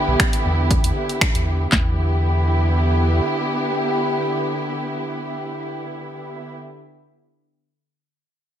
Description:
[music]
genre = afro house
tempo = 118 BPM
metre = 4/4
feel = straight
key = E minor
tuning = A4 = 441 Hz
[part]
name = muted studio string section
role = sustained chords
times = 0.0-6.5 s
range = D3 to G4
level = -22 LUFS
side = equal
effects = sidechain pumping
[part]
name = round analog bass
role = bass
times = 0.1-3.2 s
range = B1 to E2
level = -19 LUFS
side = equal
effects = sidechain pumping
[part]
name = deep house drum kit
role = drums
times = 0.2-1.4 s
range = finger snaps, hi-hat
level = -21 LUFS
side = left 1 dB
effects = overdrive
[part]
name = house drum kit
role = drums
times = 0.2-1.8 s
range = handclaps, kick drum, snare drum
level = -19 LUFS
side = equal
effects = none
[sound]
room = light reverb, digital ambience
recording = none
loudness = -18 LUFS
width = side -10 dB against mid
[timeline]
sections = 0.0-1.7 A section; 1.7-5.8 B section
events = filter sweep on analog synth bass 0.0-1.7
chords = 0.0 Em7

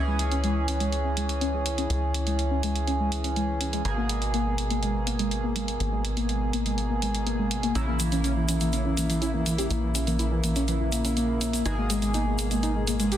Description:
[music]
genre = melodic techno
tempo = 123 BPM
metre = 4/4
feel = straight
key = G# minor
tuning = A4 = 440 Hz
[part]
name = woody wave-folded pluck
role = arpeggios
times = 0.0-13.1 s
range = G#3 to C#4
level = -31 LUFS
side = left 1 dB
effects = lush chorus, digital delay
[part]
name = sync-sweep polysynth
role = stabs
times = 0.0-13.2 s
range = B2 to G#4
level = -30 LUFS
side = right 2 dB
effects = chorus, digital delay
[part]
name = tight sequencer bass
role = bass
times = 0.0-13.2 s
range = G#1 to C#2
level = -28 LUFS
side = equal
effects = none
[part]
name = electronic hi-hat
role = drums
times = 0.2-13.2 s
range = none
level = -33 LUFS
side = right 1 dB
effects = none
[part]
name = fat analog lead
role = melody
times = 7.8-13.2 s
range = E3 to G4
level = -29 LUFS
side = equal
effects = lush chorus, digital delay
[part]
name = tube shaker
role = percussion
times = 7.8-13.2 s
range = none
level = -37 LUFS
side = left 1 dB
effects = none
[sound]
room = moderate concert hall reverb, RT60 2.0 s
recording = dense, heavily limited modern master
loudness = -24 LUFS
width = side -11 dB against mid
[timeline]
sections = 0.0-13.2 A section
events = none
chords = 0.0 C#m; 3.9 G#madd9; 7.8 A#dim; 11.7 G#madd9

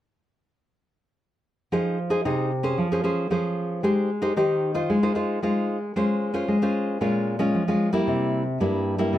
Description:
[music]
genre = samba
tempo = 113 BPM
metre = 4/4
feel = straight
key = F minor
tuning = A4 = 439 Hz
[part]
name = nylon-string guitar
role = solo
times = 1.7-9.2 s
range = G2 to C5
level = -22 LUFS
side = equal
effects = none
[sound]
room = light reverb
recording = none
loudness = -22 LUFS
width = side -13 dB against mid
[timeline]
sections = 1.7-9.2 A section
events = none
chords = 1.7 Fm7; 2.8 Dbmaj7/F; 3.8 Abmaj7; 4.9 Fm7/Ab; 6.0 Dbmaj7/Ab; 7.0 Bbm7; 8.1 C7

